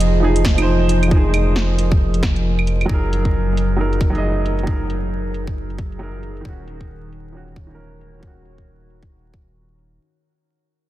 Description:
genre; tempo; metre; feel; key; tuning
future garage; 135 BPM; 4/4; swing 60% on 16ths; unclear; A4 = 439 Hz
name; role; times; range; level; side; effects
warm upright piano; accompaniment; 0.0-10.0 s; Eb3 to Eb5; -23 LUFS; right 2 dB; vintage 12-bit sampler grit, sidechain pumping, low-pass filter, tape echo
warbly tape-like pad; sustained chords; 0.0-10.0 s; Eb3 to Eb5; -25 LUFS; equal; chorus, built-in reverb, vintage 12-bit sampler grit, sidechain pumping
soft dub sub bass; bass; 0.0-10.0 s; Eb1 to Gb1; -20 LUFS; equal; tube saturation, sidechain pumping
garage drum kit; drums; 0.0-10.0 s; claves, hi-hat, snare drum; -26 LUFS; right 1 dB; low-pass filter on hats, studio reverb, low-pass filter on snare, low-pass filter on perc
electronic kick drum; drums; 0.4-9.4 s; none; -19 LUFS; equal; studio reverb
room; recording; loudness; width
little or no reverb; dense, heavily limited modern master, vinyl crackle; -16 LUFS; side -15 dB against mid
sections
0.0-10.0 A section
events
fade-out 0.0-10.0; filter sweep on upright piano 0.0-10.0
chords
0.0 Fm7; 2.9 Gb69; 6.4 Ebm7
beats
0.22 0.67 | 1.11 1.56 2.00 2.45 | 2.89 3.33 3.78 4.22 | 4.67 5.11 5.56 6.00 | 6.45 6.89 7.33 7.78 | 8.22 8.67 9.11 9.56

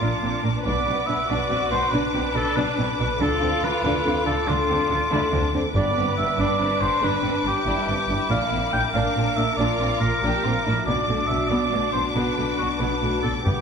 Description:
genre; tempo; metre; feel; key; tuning
cinematic, heroic adventure film score; 94 BPM (dotted quarters); 12/8; straight; unclear; A4 = 437 Hz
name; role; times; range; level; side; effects
rich symphonic violin section; melody; 0.0-13.6 s; D6; -30 LUFS; left 2 dB; none
warm oboe; second line; 0.0-13.6 s; F4 to G5; -25 LUFS; right 1 dB; none
warm symphonic violin section; second line; 0.0-13.6 s; B3 to G4; -29 LUFS; left 4 dB; none
warm symphonic viola section; accompaniment; 0.0-13.6 s; A3 to B4; -28 LUFS; left 1 dB; none
rich chamber cello section; bass; 0.0-13.5 s; G2 to D3; -29 LUFS; right 2 dB; none
rich symphonic double bass section; bass; 0.0-13.5 s; G1 to D2; -29 LUFS; right 1 dB; none
timpani; percussion; 5.7-6.3, 13.5-13.6 s; G2; -28 LUFS; left 1 dB; none
room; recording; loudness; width
wet recital hall reverb, RT60 1.6 s; recorded in a church or concert hall; -20 LUFS; side -6 dB against mid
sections
0.0-13.6 A section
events
none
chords
0.0 Bb; 0.7 Bm; 3.2 Dm; 5.8 G; 8.3 Bb; 10.9 Bm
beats
0.01 | 0.65 1.29 1.93 2.56 | 3.20 3.84 4.48 5.11 | 5.75 6.39 7.02 7.66 | 8.30 8.94 9.58 10.23 | 10.87 11.51 12.15 12.80 | 13.45

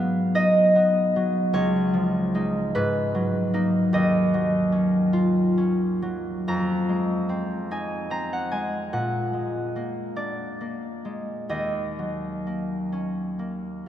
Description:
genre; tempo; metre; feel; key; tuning
classical, solo harp piece; 41-52 BPM (dotted quarters); 6/8; rubato; Eb minor; A4 = 440 Hz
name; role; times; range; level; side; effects
concert harp; solo; 0.0-13.9 s; Db2 to Bb5; -22 LUFS; equal; none
room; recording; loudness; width
wet cathedral reverb, RT60 4.8 s; none; -22 LUFS; side -11 dB against mid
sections
0.0-13.9 A section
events
none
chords
0.0 Abm7; 1.6 Dbadd9; 2.7 Abm9; 3.9 Ebm9; 6.5 Fm7; 8.9 Bbaug7; 11.5 Ebm7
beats
0.37 | 1.55 2.74 | 3.95 5.16 | 6.47 7.70 | 8.92 10.18 | 11.53 12.95

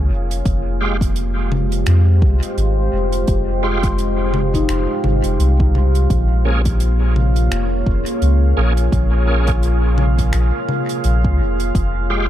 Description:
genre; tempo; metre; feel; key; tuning
ambient dub; 85 BPM; 4/4; swing 57% on 16ths; F minor; A4 = 440 Hz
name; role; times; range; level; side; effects
deep dark ambient pad; sustained chords; 0.0-12.3 s; Ab3 to F5; -22 LUFS; equal; chorus, built-in reverb
soft synth bell; arpeggios; 0.0-6.9 s; Eb4 to C6; -28 LUFS; left 5 dB; chorus, dub echo
soft dub sub bass; bass; 0.0-12.3 s; F1 to F2; -16 LUFS; equal; none
crisp fusion drum kit; drums; 0.3-11.9 s; finger snaps, hi-hat, toms; -26 LUFS; left 1 dB; dub echo
electronic kick drum; drums; 0.5-11.9 s; none; -20 LUFS; equal; none
bright tonewheel organ; stabs; 0.8-12.3 s; Ab3 to Ab4; -26 LUFS; right 2 dB; overdrive, chorus vibrato, fast rotary speaker, dub echo
room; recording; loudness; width
small room ambience; none; -14 LUFS; side -12 dB against mid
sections
0.0-12.3 A section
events
none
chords
0.5 Fmadd9; 6.1 Bbm7; 11.7 Fmadd9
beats
| 0.46 1.16 1.87 2.57 | 3.28 3.98 4.69 5.40 | 6.10 6.81 7.51 8.22 | 8.93 9.63 10.34 11.04 | 11.75

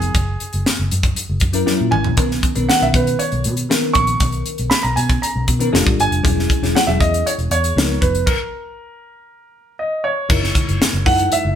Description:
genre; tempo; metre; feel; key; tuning
polished 1980s jazz-funk pop; 118 BPM; 4/4; straight; B major; A4 = 443 Hz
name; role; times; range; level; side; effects
clear baby grand piano; melody; 0.0-11.6 s; G#4 to C#6; -20 LUFS; right 2 dB; none
bell-like FM electric piano; accompaniment; 0.0-11.6 s; D#3 to A#4; -22 LUFS; left 3 dB; chorus
vintage muted fingered electric bass; bass; 0.0-11.6 s; E1 to B2; -20 LUFS; equal; none
tight funk drum kit; drums; 0.0-11.4 s; crash cymbal, hi-hat, kick drum, snare drum, toms; -18 LUFS; equal; none
congas; percussion; 10.3-11.4 s; none; -34 LUFS; equal; none
room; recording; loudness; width
wet studio reverb, RT60 0.8 s; band playing live in one room; -15 LUFS; side -9 dB against mid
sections
0.0-10.3 A section; 10.3-11.6 B section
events
drum fill 1.7-2.2; stop 8.3-10.3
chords
0.1 F#7; 2.2 Bmaj9; 5.7 F69; 6.2 E69; 7.8 C#13; 8.3 N.C.; 10.3 F#13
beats
| 0.15 0.65 1.16 1.67 | 2.18 2.68 3.19 3.70 | 4.21 4.71 5.22 5.73 | 6.24 6.74 7.25 7.76 | 8.27 8.78 9.28 9.79 | 10.30 10.81 11.31

